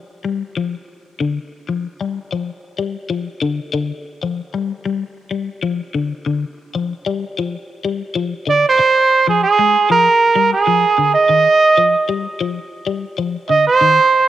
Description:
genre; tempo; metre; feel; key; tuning
afrobeat; 95 BPM; 4/4; swing 55% on 16ths; F dorian; A4 = 440 Hz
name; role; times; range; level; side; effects
electric guitar at the edge of break-up; arpeggios; 0.2-14.0 s; D3 to Ab3; -22 LUFS; left 6 dB; phaser
warm trumpet; melody; 8.5-14.3 s; Ab4 to Eb5; -11 LUFS; right 3 dB; cassette tape
room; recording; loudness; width
wet spring reverb, RT60 3.0 s; home recording on cassette; -15 LUFS; side -12 dB against mid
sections
0.0-8.8 A section; 8.8-14.3 B section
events
none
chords
0.0 G5; 8.8 Fm7

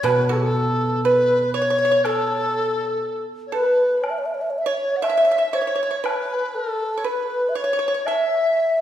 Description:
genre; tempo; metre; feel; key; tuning
chinese traditional, Chinese chamber ensemble; 60 BPM; 2/4; straight; A gong mode; A4 = 440 Hz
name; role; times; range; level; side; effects
pipa; second line; 0.0-8.8 s; A4 to E5; -26 LUFS; right 4 dB; none
reedy large dizi; second line; 0.0-8.8 s; F#4 to F#5; -24 LUFS; left 1 dB; none
guzheng; accompaniment; 0.0-3.0 s; B2; -26 LUFS; right 1 dB; none
mellow low xiao; melody; 0.1-8.8 s; A4 to E5; -22 LUFS; equal; none
woodblock; percussion; 0.1-8.3 s; none; -33 LUFS; equal; none
room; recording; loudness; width
wet recital hall reverb, RT60 1.8 s; heard from further back in the room; -18 LUFS; side -11 dB against mid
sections
0.0-8.8 A section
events
none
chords
none

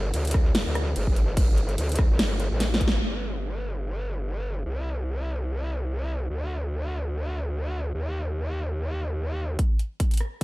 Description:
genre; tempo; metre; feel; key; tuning
heavy wobble dubstep; 146 BPM; 4/4; swing 55% on 16ths, half-time; unclear; A4 = 439 Hz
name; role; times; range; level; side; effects
growl bass; bass; 0.0-9.6 s; G1 to Eb2; -27 LUFS; equal; chorus, overdrive
big-room dance drum kit; drums; 0.1-3.0, 9.6-10.4 s; crash cymbal, hi-hat, rim click, snare drum; -29 LUFS; equal; low-pass filter on hats, low-pass filter on cymbals, low-pass filter on snare, low-pass filter on room
electronic kick drum; drums; 0.3-2.9, 9.6-10.4 s; none; -22 LUFS; equal; none
room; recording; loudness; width
little or no reverb; dark, warm production; -24 LUFS; side -19 dB against mid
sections
0.0-3.0 A section; 3.0-9.6 B section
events
drop 0.0-3.0; drum fill 2.6-3.0; band accent 2.9; filter sweep on drum 3.0-9.6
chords
none

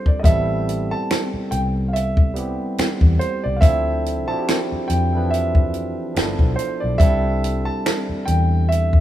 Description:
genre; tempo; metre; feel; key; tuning
R&B, neo-soul; 71 BPM; 4/4; swing 57% on 16ths; A minor; A4 = 440 Hz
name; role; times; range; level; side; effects
warm grand piano; melody; 0.0-9.0 s; C5 to A5; -24 LUFS; right 2 dB; slapback echo
barky tine electric piano; accompaniment; 0.0-9.0 s; E3 to B4; -25 LUFS; right 1 dB; overdrive
compact cocktail drum kit; drums; 0.1-9.0 s; finger snaps, hi-hat, kick drum, snare drum; -18 LUFS; equal; none
vintage muted fingered electric bass; bass; 0.2-9.0 s; G1 to F2; -21 LUFS; equal; none
room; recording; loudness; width
small room reverb; rough home demo mix, small room ambience; -17 LUFS; side -12 dB against mid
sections
0.2-9.0 A section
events
none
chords
0.2 Am9; 3.6 Dm9; 6.2 G13; 7.0 C69

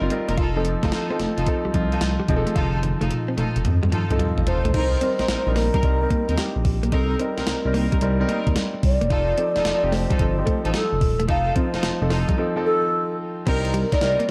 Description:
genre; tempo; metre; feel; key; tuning
R&B, new jack swing; 110 BPM; 4/4; swing 67% on 16ths; C dorian; A4 = 438 Hz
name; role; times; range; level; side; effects
warm concert grand piano; accompaniment; 0.0-14.3 s; F3 to F5; -29 LUFS; equal; none
smooth gliding synth bass; bass; 0.0-14.3 s; Eb1 to F2; -26 LUFS; equal; none
direct-recorded clean electric guitar; riff; 0.1-14.3 s; F3 to F4; -32 LUFS; equal; lush chorus
crisp 8-bit digital drum machine; drums; 0.1-14.3 s; crash cymbal, hi-hat, kick drum, snare drum, toms; -27 LUFS; equal; overdrive
clear studio string section; stabs; 0.3-14.2 s; C4 to Bb4; -33 LUFS; equal; digital delay
mellow wooden-headed alto flute; melody; 4.5-14.3 s; G4 to F5; -27 LUFS; equal; none
room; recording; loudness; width
moderate plate reverb, RT60 1.2 s; dark, warm production; -22 LUFS; mono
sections
0.0-4.7 A section; 4.7-13.5 B section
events
drum fill 2.6-4.7; drums muted 12.4-13.5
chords
0.4 F7; 4.7 Cm7; 9.1 F7; 13.5 Cm7

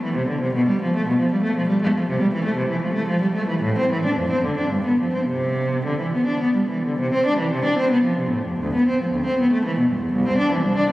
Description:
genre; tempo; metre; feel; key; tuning
classical, baroque-style suite movement for unaccompanied cello; 102-124 BPM; 3/4; rubato; C major; A4 = 440 Hz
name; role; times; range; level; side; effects
warm cello; solo; 0.0-10.9 s; C2 to D4; -19 LUFS; equal; none
room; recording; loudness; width
wet church reverb, RT60 3.6 s; recorded on a phone in the room, studio reverb; -19 LUFS; side -16 dB against mid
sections
0.0-7.0 A section; 7.0-10.9 B section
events
none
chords
none

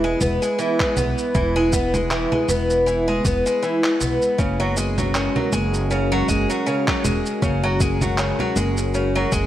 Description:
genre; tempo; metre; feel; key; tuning
folktronica; 79 BPM; 4/4; swing 56% on 16ths; E lydian; A4 = 440 Hz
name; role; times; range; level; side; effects
warbly tape-like pad; sustained chords; 0.0-9.5 s; G#3 to B4; -26 LUFS; equal; chorus, built-in reverb
picked twelve-string acoustic guitar; arpeggios; 0.0-9.5 s; C#3 to B3; -21 LUFS; equal; tape echo
upright bass; bass; 0.0-9.5 s; E1 to B1; -24 LUFS; equal; none
electronic kick drum; drums; 0.2-9.5 s; none; -24 LUFS; equal; overdrive
electronic shaker, handclaps and congas; drums; 0.2-9.5 s; none; -27 LUFS; right 1 dB; none
room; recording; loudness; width
light reverb; vinyl crackle; -18 LUFS; side -12 dB against mid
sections
0.0-9.5 A section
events
none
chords
0.0 E; 4.4 F#add9

